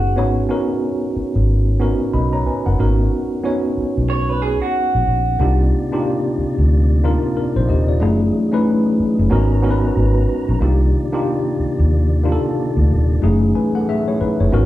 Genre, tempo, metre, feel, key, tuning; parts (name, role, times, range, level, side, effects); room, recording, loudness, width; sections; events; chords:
R&B, neo-soul; 92 BPM; 4/4; swing 60% on 16ths; A4 = 440 Hz
electric guitar through a small old amp; second line; 0.0-5.5 s; F#4 to C#5; -21 LUFS; right 2 dB; spring reverb
tine electric piano; accompaniment; 0.0-14.7 s; A3 to B5; -19 LUFS; equal; overdrive, fast stereo tremolo
vintage muted fingered electric bass; bass; 0.0-14.7 s; Eb1 to Eb2; -16 LUFS; equal
mellow tonewheel organ; sustained chords; 5.4-14.7 s; C3 to A#5; -25 LUFS; equal; fast rotary speaker, chorus vibrato
moderate large studio reverb, RT60 0.7 s; band playing live in one room; -15 LUFS; side -14 dB against mid
0.0-2.8 A section; 2.8-5.4 B section; 5.4-14.7 C section
0.0 G#m9; 2.8 G#m9 (rootless); 5.4 Cm9; 8.0 F#m9; 9.3 G#m9; 10.6 Cm9; 13.2 F#m9